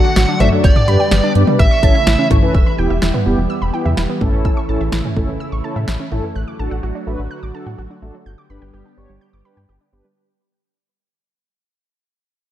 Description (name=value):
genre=synth-pop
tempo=126 BPM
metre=4/4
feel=straight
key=unclear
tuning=A4 = 440 Hz
part: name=dark smooth lead guitar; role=melody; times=0.0-2.3 s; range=D5 to F#5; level=-20 LUFS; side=right 1 dB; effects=overdrive, digital delay
part: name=mellow synth brass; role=accompaniment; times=0.0-10.1 s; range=B3 to D5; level=-22 LUFS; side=equal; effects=chorus
part: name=phased analog pad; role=sustained chords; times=0.0-10.1 s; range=C#3 to G4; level=-23 LUFS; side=left 1 dB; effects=phaser, chorus
part: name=wide unison pluck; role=arpeggios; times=0.0-10.1 s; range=E3 to G6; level=-25 LUFS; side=right 3 dB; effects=digital delay
part: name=round analog bass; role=bass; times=0.2-10.0 s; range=E1 to A2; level=-18 LUFS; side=equal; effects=none
part: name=house drum kit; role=drums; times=0.2-6.2 s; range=cowbell, hi-hat, kick drum, snare drum, toms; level=-16 LUFS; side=equal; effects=none
room=light reverb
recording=dark, warm production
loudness=-13 LUFS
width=side -12 dB against mid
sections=0.0-2.5 A section; 2.5-10.2 B section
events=fade-out 2.5-10.2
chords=0.0 D/A; 0.6 G; 1.6 A; 2.5 Em; 4.2 A; 6.4 D/A; 8.3 G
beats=0.16 | 0.64 1.12 1.59 2.07 | 2.54 3.02 3.50 3.97 | 4.45 4.93 5.40 5.88 | 6.36 6.83 7.31 7.78 | 8.26 8.74 9.21 9.69